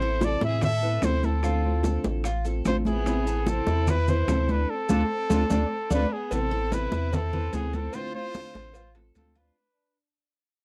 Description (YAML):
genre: latin, Cuban son and guajira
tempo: 148 BPM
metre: 4/4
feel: straight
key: A minor from 6.3 s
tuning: A4 = 440 Hz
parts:
  - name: clear trumpet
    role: melody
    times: 0.0-10.0 s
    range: G#4 to E5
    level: -32 LUFS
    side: equal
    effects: none
  - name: bright chamber violin section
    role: second line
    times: 0.0-10.0 s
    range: B3 to A4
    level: -42 LUFS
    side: equal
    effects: none
  - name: nylon-string guitar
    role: accompaniment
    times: 0.0-9.6 s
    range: C3 to F4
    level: -34 LUFS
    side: equal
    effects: none
  - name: Cuban tres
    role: arpeggios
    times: 0.0-9.6 s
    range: D4 to B4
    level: -38 LUFS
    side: equal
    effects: none
  - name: pure sine sub bass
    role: bass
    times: 0.0-9.5 s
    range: A1 to A2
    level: -29 LUFS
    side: equal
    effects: none
  - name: congas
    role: percussion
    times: 0.0-9.6 s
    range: none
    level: -33 LUFS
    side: equal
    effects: none
  - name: bongos and cowbell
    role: percussion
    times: 0.2-9.6 s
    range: none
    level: -35 LUFS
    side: equal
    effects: none
  - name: maracas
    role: percussion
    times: 0.2-9.6 s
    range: none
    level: -48 LUFS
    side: equal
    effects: none
room: little or no reverb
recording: dry, close 1970s-style studio recording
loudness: -26 LUFS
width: mono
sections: 0.0-6.3 A section; 6.3-9.6 B section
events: band accent 4.7-6.3; drum fill 5.7-6.3; fade-out 6.3-9.6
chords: 0.0 Amadd9; 1.4 Dm7; 3.1 Amadd9; 4.7 Dm7; 6.3 Amadd9; 7.9 Dm7